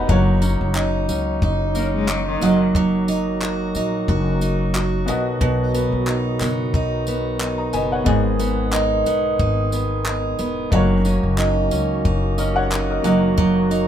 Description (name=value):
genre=acoustic pop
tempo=90 BPM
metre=4/4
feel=swing 55% on 16ths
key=unclear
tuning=A4 = 439 Hz
part: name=bright upright piano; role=accompaniment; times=0.0-13.9 s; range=A3 to B5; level=-27 LUFS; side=left 4 dB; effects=none
part: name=picked steel-string acoustic guitar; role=accompaniment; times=0.0-13.9 s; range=G#2 to B4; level=-20 LUFS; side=right 2 dB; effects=none
part: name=dark woodwind section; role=sustained chords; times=0.0-13.9 s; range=C#3 to G#4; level=-27 LUFS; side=left 2 dB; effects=none
part: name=upright bass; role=bass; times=0.0-13.9 s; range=E1 to C#2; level=-24 LUFS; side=left 1 dB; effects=none
part: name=compact cocktail drum kit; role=drums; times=0.1-13.9 s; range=handclaps, kick drum, tambourine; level=-24 LUFS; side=equal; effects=none
part: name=bright cello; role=second line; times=1.7-2.6 s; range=D#3 to A#3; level=-26 LUFS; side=left 5 dB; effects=none
room=moderate studio reverb, RT60 0.7 s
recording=minimal, uncompressed stereo recording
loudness=-17 LUFS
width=side -10 dB against mid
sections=0.0-13.9 A section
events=none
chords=0.1 F#6; 2.4 D#m/F#; 5.1 B; 8.1 G#m; 10.7 F#6; 13.0 D#m/F#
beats=| 0.09 0.76 1.42 2.09 | 2.75 3.42 4.08 4.74 | 5.41 6.07 6.74 7.40 | 8.06 8.73 9.39 10.06 | 10.72 11.39 12.05 12.71 | 13.38